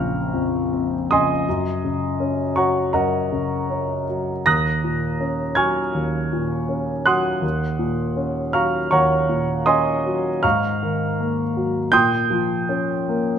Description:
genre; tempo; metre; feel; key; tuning
classical, impressionist solo piano; 80 BPM; 4/4; rubato; unclear; A4 = 440 Hz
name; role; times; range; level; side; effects
warm grand piano; solo; 0.0-13.4 s; Bb1 to Bb6; -18 LUFS; equal; none
room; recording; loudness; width
moderate scoring stage reverb, RT60 1.8 s; close, detailed microphones; -18 LUFS; side -8 dB against mid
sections
0.0-13.4 A section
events
none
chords
0.0 Bbm11; 1.5 Gbadd9; 4.5 Ebm7; 10.4 Absus2; 11.9 Bbmadd9

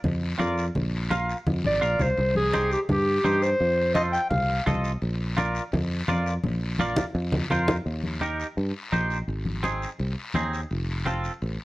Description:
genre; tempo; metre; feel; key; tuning
latin, cumbia; 169 BPM; 4/4; straight; unclear; A4 = 440 Hz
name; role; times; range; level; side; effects
fingered electric bass; bass; 0.0-11.6 s; F1 to G2; -27 LUFS; equal; none
congas; percussion; 0.0-11.6 s; none; -29 LUFS; left 1 dB; none
guiro; percussion; 0.0-11.6 s; none; -39 LUFS; left 3 dB; none
twangy electric guitar; accompaniment; 0.4-11.3 s; C4 to F5; -28 LUFS; right 1 dB; wide subtle chorus
bright clarinet; melody; 1.7-4.6 s; G4 to G5; -24 LUFS; equal; plate reverb
room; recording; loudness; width
moderate studio reverb, RT60 0.7 s; worn, warbling old tape, cassette tape, warbly pitch drift; -23 LUFS; side -19 dB against mid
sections
0.0-7.9 A section; 7.9-11.6 B section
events
drum fill 1.6-2.2, 6.4-7.9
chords
0.0 Bb5; 2.2 Cm; 3.6 F7; 5.0 Bb; 7.9 Eb; 9.3 Ab; 10.7 F

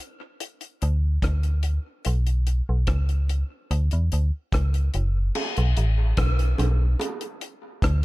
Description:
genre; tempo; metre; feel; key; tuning
dub reggae; 73 BPM; 4/4; straight; unclear; A4 = 440 Hz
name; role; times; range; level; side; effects
deep reggae drum kit; drums; 0.4-8.0 s; crash cymbal, hi-hat, kick drum, rim click; -28 LUFS; equal; none
metallic FM bass; bass; 0.8-8.0 s; F#1 to E2; -21 LUFS; equal; none
bongos; percussion; 5.4-7.2 s; none; -32 LUFS; right 4 dB; dub echo
room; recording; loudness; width
small room ambience; dark, warm production; -21 LUFS; side -20 dB against mid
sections
0.0-5.3 A section; 5.3-8.0 B section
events
none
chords
none

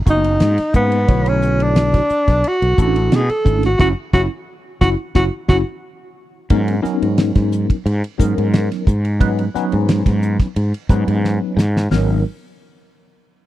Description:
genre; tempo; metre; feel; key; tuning
electric jazz fusion; 89 BPM; 4/4; straight; G# phrygian; A4 = 437 Hz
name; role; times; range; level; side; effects
fretless electric bass; bass; 0.0-12.2 s; F#1 to B2; -17 LUFS; equal; none
breathy alto saxophone; melody; 0.1-5.6 s; B3 to A4; -18 LUFS; equal; slapback echo
tine electric piano; accompaniment; 0.1-12.2 s; D3 to C#5; -21 LUFS; equal; medium stereo tremolo, phaser
damped 70s drum kit; drums; 0.1-12.1 s; hi-hat, kick drum, ride cymbal, snare drum; -15 LUFS; equal; none
room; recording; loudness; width
small room ambience; dry, close 1970s-style studio recording; -14 LUFS; side -14 dB against mid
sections
0.0-6.5 A section; 6.5-11.9 B section; 11.9-13.5 C section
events
band accent 3.8-6.5; drum fill 5.8-6.5, 11.2-11.9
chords
0.0 G#m11; 1.1 Bm11; 3.8 F#5; 6.5 G#m11

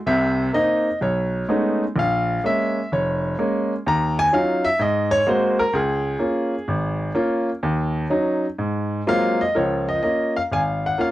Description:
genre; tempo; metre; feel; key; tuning
solo jazz; 127 BPM; 4/4; swing 68% on 8ths, rubato; Db major; A4 = 440 Hz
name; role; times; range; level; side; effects
clear baby grand piano; solo; 0.1-11.1 s; F1 to Bb5; -19 LUFS; equal; none
room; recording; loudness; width
light reverb; dry, close 1970s-style studio recording; -19 LUFS; side -15 dB against mid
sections
0.0-9.5 A section; 9.5-11.1 B section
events
grand piano solo 0.0-9.5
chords
0.1 Cm7; 1.0 Cb13; 2.0 Bbm7; 3.9 Ebm9; 4.8 Ab9; 5.7 Db6; 7.6 Ebm7; 8.6 Ab13; 9.5 Db6

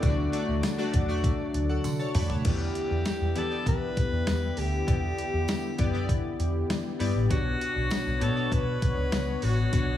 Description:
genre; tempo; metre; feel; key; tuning
1980s-style pop; 99 BPM; 4/4; straight; unclear; A4 = 441 Hz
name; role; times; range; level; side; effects
chorused retro synth keys; accompaniment; 0.0-10.0 s; B2 to B5; -32 LUFS; left 3 dB; none
warm analog pad; sustained chords; 0.0-10.0 s; D3 to C#5; -36 LUFS; right 1 dB; chorus
vintage muted picked electric bass; bass; 0.0-10.0 s; A1 to E3; -28 LUFS; equal; none
clean 12-bit digital drum machine; drums; 0.0-9.9 s; crash cymbal, hi-hat, kick drum, snare drum, tambourine, toms; -29 LUFS; equal; overdrive
tambourine; percussion; 0.6-9.3 s; none; -49 LUFS; right 6 dB; none
edgy alto saxophone; melody; 2.5-10.0 s; F#4 to B4; -32 LUFS; left 2 dB; tape echo
room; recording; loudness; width
light reverb, digital ambience; small room ambience; -25 LUFS; side -12 dB against mid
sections
0.0-2.5 A section; 2.5-10.0 B section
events
drum fill 1.8-2.5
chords
0.0 D; 2.5 Em7; 7.3 Bmadd9

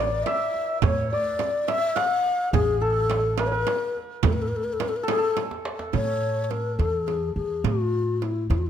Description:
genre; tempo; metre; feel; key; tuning
Persian modal ensemble; 70 BPM (dotted quarters); 6/8; straight; A dastgah chahargah; A4 = 441 Hz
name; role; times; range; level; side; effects
breathy mellow low ney; melody; 0.0-8.7 s; E4 to F5+48c; -25 LUFS; left 3 dB; none
santur; second line; 0.0-8.1 s; F4+45c to F5+45c; -31 LUFS; right 3 dB; none
upright bass; bass; 0.0-8.7 s; A1 to A2; -27 LUFS; equal; none
frame drum; percussion; 0.3-8.6 s; none; -31 LUFS; right 10 dB; none
tombak; percussion; 0.3-5.9 s; none; -30 LUFS; right 3 dB; none
room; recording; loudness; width
light reverb; close, detailed microphones; -22 LUFS; side -9 dB against mid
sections
0.0-5.9 A section; 5.9-8.7 B section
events
drum fill 5.4-5.9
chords
none

